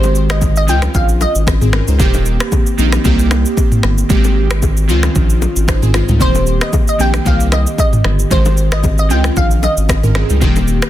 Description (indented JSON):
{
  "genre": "afrobeats",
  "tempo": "114 BPM",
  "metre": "4/4",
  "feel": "swing 55% on 16ths",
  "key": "unclear",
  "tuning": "A4 = 440 Hz",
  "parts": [
    { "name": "glassy wavetable pluck", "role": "melody", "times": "0.0-1.3, 6.2-9.8 s", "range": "C5 to G5", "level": "-19 LUFS", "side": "equal", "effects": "chorus, ping-pong delay" },
    { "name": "glassy digital keys", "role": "accompaniment", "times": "0.0-10.9 s", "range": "Eb3 to C5", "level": "-18 LUFS", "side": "right 1 dB", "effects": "chorus" },
    { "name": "saturated sub bass", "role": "bass", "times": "0.0-10.8 s", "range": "Eb1 to Db2", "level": "-15 LUFS", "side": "equal", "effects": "none" },
    { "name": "afro-pop drum kit", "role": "drums", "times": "0.0-10.9 s", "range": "finger snaps, kick drum, rim click, shaker, toms", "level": "-15 LUFS", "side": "equal", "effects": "soft clipping on snare" },
    { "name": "bongos and congas", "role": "percussion", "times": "0.0-10.7 s", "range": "none", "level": "-25 LUFS", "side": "left 5 dB", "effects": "none" }
  ],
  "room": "little or no reverb",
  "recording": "dense, heavily limited modern master",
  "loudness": "-11 LUFS",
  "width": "side -13 dB against mid",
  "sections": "0.0-10.9 A section",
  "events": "none",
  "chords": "0.0 Abmaj7; 0.7 Dbmaj9; 2.0 Eb6; 3.0 Cm7; 4.1 Abmaj7; 4.9 Dbmaj9; 6.2 Eb6; 7.3 Cm7; 8.3 Abmaj7; 9.1 Dbmaj9"
}